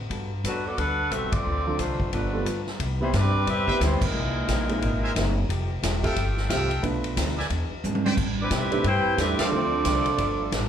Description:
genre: jazz, big band swing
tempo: 179 BPM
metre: 4/4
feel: swing 62% on 8ths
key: C major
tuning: A4 = 440 Hz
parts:
  - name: upright bass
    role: bass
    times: 0.0-10.7 s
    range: E1 to B2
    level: -28 LUFS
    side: equal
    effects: none
  - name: hollow-body jazz guitar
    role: accompaniment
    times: 0.1-10.7 s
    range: A2 to A4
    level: -36 LUFS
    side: left 6 dB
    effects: slapback echo
  - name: swinging big-band drum kit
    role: drums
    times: 0.1-10.6 s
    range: crash cymbal, hi-hat, kick drum, ride cymbal, snare drum, toms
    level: -29 LUFS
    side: equal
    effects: none
  - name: mellow saxophone section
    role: melody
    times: 0.5-5.4, 8.4-10.7 s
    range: G3 to G5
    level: -26 LUFS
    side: equal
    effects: slapback echo
  - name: warm grand piano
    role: accompaniment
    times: 1.7-10.2 s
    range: F3 to C5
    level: -30 LUFS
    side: right 3 dB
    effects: slapback echo
  - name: clear trombone section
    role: second line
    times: 2.1-5.4, 8.4-10.7 s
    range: Bb2 to G4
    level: -32 LUFS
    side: right 4 dB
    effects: slapback echo
  - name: brilliant trumpet section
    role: stabs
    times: 3.7-9.5 s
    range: A4 to G#5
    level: -32 LUFS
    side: right 1 dB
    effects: slapback echo
room: small room ambience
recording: live gig heard through the venue's PA, club reverb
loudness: -22 LUFS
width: side -9 dB against mid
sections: 0.0-2.8 A section; 2.8-10.7 B section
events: band accent 1.3, 4.0, 9.3; break 2.5-2.8; drum fill 7.8-8.2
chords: 0.1 Gmaj9; 1.5 Dm7; 2.1 G9; 2.8 Cmaj7; 4.1 C7alt; 5.5 Fmaj9; 6.8 Bm7b5; 7.5 E7; 8.2 Am11; 9.5 Dm7; 10.2 G9

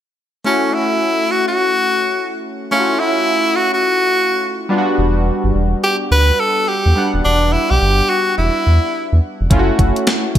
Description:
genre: R&B, new jack swing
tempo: 106 BPM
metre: 4/4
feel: swing 62% on 16ths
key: unclear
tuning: A4 = 440 Hz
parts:
  - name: warm analog keys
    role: accompaniment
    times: 0.4-10.4 s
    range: G3 to F#5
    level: -20 LUFS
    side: equal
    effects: chorus
  - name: bright tenor saxophone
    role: melody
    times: 0.5-9.2 s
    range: C#4 to B4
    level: -15 LUFS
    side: equal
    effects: none
  - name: round analog bass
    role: bass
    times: 5.0-10.4 s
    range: D#1 to E2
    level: -14 LUFS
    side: equal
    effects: none
  - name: crisp 8-bit digital drum machine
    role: drums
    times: 9.5-10.4 s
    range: hi-hat, kick drum, snare drum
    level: -14 LUFS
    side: equal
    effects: overdrive, gated reverb
room: moderate plate reverb, RT60 1.5 s, digital ambience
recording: bright 1980s-style digital production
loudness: -13 LUFS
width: side -11 dB against mid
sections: 0.5-9.5 A section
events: none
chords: 0.5 F#m7; 4.7 Em7; 9.5 F#m7

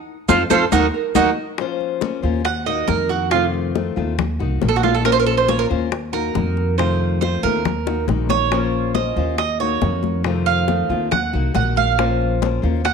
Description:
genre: latin, Cuban son and guajira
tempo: 138 BPM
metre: 4/4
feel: straight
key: Bb harmonic minor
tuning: A4 = 439 Hz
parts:
  - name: silver concert flute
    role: melody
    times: 0.3-1.3 s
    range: F5 to Gb5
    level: -22 LUFS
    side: equal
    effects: none
  - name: fingerpicked steel-string acoustic guitar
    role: accompaniment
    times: 0.3-12.9 s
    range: C3 to C5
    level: -24 LUFS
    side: left 11 dB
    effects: none
  - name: Cuban tres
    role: arpeggios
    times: 0.3-12.9 s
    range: Eb4 to Gb5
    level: -20 LUFS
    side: right 11 dB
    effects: none
  - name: upright bass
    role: bass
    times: 0.3-12.9 s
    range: Bb1 to F2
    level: -22 LUFS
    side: equal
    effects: none
  - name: bongos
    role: percussion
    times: 0.3-12.9 s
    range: none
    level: -27 LUFS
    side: left 11 dB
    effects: none
  - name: congas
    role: percussion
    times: 0.3-12.9 s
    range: none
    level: -27 LUFS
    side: left 11 dB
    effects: none
  - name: maracas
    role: percussion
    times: 0.3-1.3 s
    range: none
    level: -31 LUFS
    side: right 14 dB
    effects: none
  - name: nylon-string guitar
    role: second line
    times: 0.9-1.6 s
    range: Bb4 to Eb5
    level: -26 LUFS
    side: right 14 dB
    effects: none
room: moderate echo chamber reverb, RT60 1.5 s, small room ambience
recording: 1960s-style stereo with parts hard left and right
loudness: -17 LUFS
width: side -6 dB against mid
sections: 0.0-1.6 A section; 1.6-12.9 B section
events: band accent 0.0-1.6; drum fill 0.9-1.6, 7.9-8.5; Cuban tres solo 1.6-12.9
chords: 0.0 F7; 0.7 Ebm; 1.6 Bbmadd9; 2.5 Ebm; 3.3 F7; 4.2 Ebm; 5.1 Bbmadd9; 5.9 Ebm; 6.8 F7; 7.7 Ebm; 8.5 Bbmadd9; 9.4 Ebm; 10.3 F7; 11.1 Ebm; 12.0 Bbmadd9

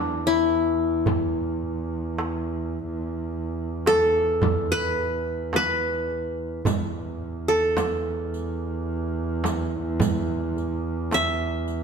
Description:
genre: Arabic maqam ensemble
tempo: 107 BPM (eighths)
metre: 10/8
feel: straight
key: unclear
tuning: A4 = 440 Hz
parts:
  - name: qanun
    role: melody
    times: 0.0-11.8 s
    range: D4 to E5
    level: -23 LUFS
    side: left 1 dB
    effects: none
  - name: warm double bass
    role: drone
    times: 0.0-11.8 s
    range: E2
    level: -28 LUFS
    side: right 2 dB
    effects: none
  - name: darbuka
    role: percussion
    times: 0.5-11.4 s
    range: none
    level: -31 LUFS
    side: right 3 dB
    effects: none
  - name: frame drum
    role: percussion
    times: 1.1-11.4 s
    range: none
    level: -29 LUFS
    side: right 1 dB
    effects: none
  - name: riq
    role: percussion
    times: 6.7-11.8 s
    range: none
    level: -34 LUFS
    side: right 6 dB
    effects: none
room: wet stone room reverb, RT60 1.6 s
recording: band playing live in one room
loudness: -23 LUFS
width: side -6 dB against mid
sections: 0.0-11.8 A section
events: none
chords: none

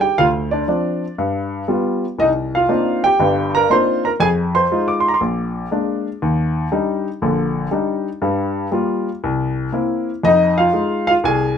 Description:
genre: solo jazz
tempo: 119 BPM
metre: 4/4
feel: swing 67% on 8ths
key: Eb major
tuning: A4 = 440 Hz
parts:
  - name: warm baby grand piano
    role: solo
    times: 0.0-11.6 s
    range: G1 to D6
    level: -16 LUFS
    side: equal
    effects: none
room: moderate small room reverb, RT60 0.5 s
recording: none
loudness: -16 LUFS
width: side -8 dB against mid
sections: 0.0-11.6 A section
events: none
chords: 0.2 Dm7; 1.2 G7; 2.2 Cm11; 4.2 Fm7; 5.2 Bb7; 6.2 Ebmaj7; 8.2 Gm7; 9.2 C7; 10.2 Fm7

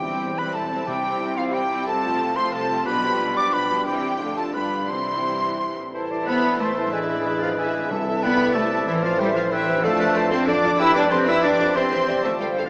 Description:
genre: classical, dramatic, fast romantic movement for symphony orchestra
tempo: 183 BPM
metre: 3/4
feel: rubato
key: C major, A minor from 5.9 s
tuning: A4 = 440 Hz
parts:
  - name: rich symphonic violin section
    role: melody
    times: 0.0-12.7 s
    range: C5 to D6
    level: -35 LUFS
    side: equal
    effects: none
  - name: bright silver concert flute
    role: second line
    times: 0.0-12.7 s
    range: E5 to D6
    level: -30 LUFS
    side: equal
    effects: none
  - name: rich studio violin section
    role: second line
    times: 0.0-12.7 s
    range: C4 to E6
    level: -33 LUFS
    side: equal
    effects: none
  - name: warm clarinet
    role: second line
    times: 0.0-12.5 s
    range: F4 to E5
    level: -32 LUFS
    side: equal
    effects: none
  - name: clear symphonic viola section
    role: accompaniment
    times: 0.0-12.6 s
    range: D3 to C5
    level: -35 LUFS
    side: equal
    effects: none
  - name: mellow French horn section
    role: sustained chords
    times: 0.0-12.7 s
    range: G3 to D5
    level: -32 LUFS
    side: equal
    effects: none
  - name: concert harp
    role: arpeggios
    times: 0.0-12.7 s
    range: F2 to C5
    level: -36 LUFS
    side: equal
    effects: none
  - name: clear symphonic cello section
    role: bass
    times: 0.0-12.7 s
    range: E2 to E4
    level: -28 LUFS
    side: equal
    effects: none
  - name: rich symphonic double bass section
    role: bass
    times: 0.0-12.6 s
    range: E1 to F2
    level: -40 LUFS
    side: equal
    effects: none
  - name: timpani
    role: percussion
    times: 0.9-1.3, 7.9-8.4 s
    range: C3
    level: -38 LUFS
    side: equal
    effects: none
  - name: dark bassoon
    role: accompaniment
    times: 5.9-12.7 s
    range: C3 to G#3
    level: -32 LUFS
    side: equal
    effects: none
  - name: warm oboe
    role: second line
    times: 6.3-12.7 s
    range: E4 to E5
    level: -30 LUFS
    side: equal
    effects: none
room: wet concert hall reverb, RT60 2.3 s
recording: small speaker sound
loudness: -22 LUFS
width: mono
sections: 0.0-5.9 A section; 5.9-12.7 B section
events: none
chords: 0.0 C/E; 0.9 C; 1.9 F/C; 2.9 G7/B; 3.9 C; 4.2 Dm/F; 4.5 G7; 4.9 C; 5.9 Am; 6.9 E7/A; 7.9 Am/C; 8.9 Am; 9.8 Dm/F; 10.8 G7/F; 11.8 C/E

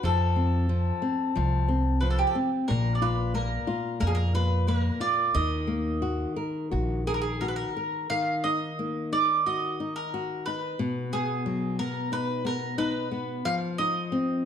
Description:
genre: fado-style ballad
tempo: 90 BPM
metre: 4/4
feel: rubato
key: Eb minor, Eb harmonic minor from 8.1 s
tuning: A4 = 440 Hz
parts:
  - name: mandolin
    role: melody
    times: 0.0-14.5 s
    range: G4 to F5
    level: -29 LUFS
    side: right 1 dB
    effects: slapback echo
  - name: nylon-string guitar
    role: accompaniment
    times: 0.0-14.5 s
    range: Bb2 to Bb4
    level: -30 LUFS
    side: left 2 dB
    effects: none
  - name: upright bass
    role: bass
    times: 0.0-7.6 s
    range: Bb1 to F2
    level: -26 LUFS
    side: equal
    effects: none
room: moderate recital hall reverb, RT60 1.5 s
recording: close, detailed microphones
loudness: -25 LUFS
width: side -8 dB against mid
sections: 0.0-8.1 A section; 8.1-14.5 B section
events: none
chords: 0.0 F; 2.7 Bb5; 5.3 Ebm; 10.8 B; 13.5 F7(no3)

